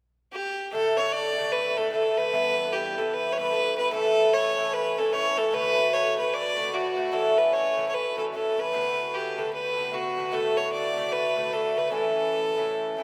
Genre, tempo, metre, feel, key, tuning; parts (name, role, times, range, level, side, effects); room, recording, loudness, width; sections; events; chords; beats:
celtic folk, Celtic hornpipe; 150 BPM; 4/4; swing 62% on 8ths; A mixolydian; A4 = 440 Hz
clear fiddle; melody; 0.3-13.0 s; F#4 to D5; -27 LUFS; equal
Irish bouzouki; accompaniment; 0.7-13.0 s; G2 to F#4; -31 LUFS; equal
wet cathedral reverb, RT60 6.2 s; recorded in a church or concert hall; -26 LUFS; mono
0.7-13.0 A section
0.0 N.C.; 0.7 Asus4; 2.3 Em; 3.9 A; 5.5 D; 7.1 A; 8.7 Bm7; 10.3 D; 11.9 A
0.33 | 0.73 1.13 1.53 1.93 | 2.33 2.73 3.13 3.53 | 3.93 4.33 4.73 5.13 | 5.53 5.93 6.33 6.73 | 7.13 7.53 7.92 8.32 | 8.72 9.12 9.52 9.92 | 10.32 10.72 11.12 11.52 | 11.92 12.32 12.72